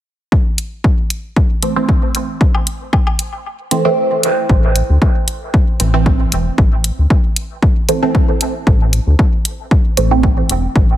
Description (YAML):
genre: dub techno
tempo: 115 BPM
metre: 4/4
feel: swing 53% on 16ths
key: A minor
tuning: A4 = 440 Hz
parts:
  - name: electronic kick drum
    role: drums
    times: 0.3-10.9 s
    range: none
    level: -13 LUFS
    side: equal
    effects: studio reverb
  - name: electronic hi-hat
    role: drums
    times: 0.6-10.6 s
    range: none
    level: -17 LUFS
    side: equal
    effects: studio reverb
  - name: filtered dub chord stab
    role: stabs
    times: 1.6-11.0 s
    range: E3 to C4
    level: -18 LUFS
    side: right 3 dB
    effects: phaser, sidechain pumping, dub echo
  - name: woodblock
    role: percussion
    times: 2.5-3.2 s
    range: none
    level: -26 LUFS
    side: left 3 dB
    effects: overdrive, sidechain pumping on perc, studio reverb, dub echo
  - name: round analog bass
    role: bass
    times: 4.5-11.0 s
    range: E1 to D2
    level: -15 LUFS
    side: equal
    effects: sidechain pumping
room: light reverb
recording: heavily compressed radio sound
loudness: -12 LUFS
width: side -13 dB against mid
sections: 0.3-4.5 A section; 4.5-11.0 B section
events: kick drops out 3.5-4.5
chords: 0.3 Am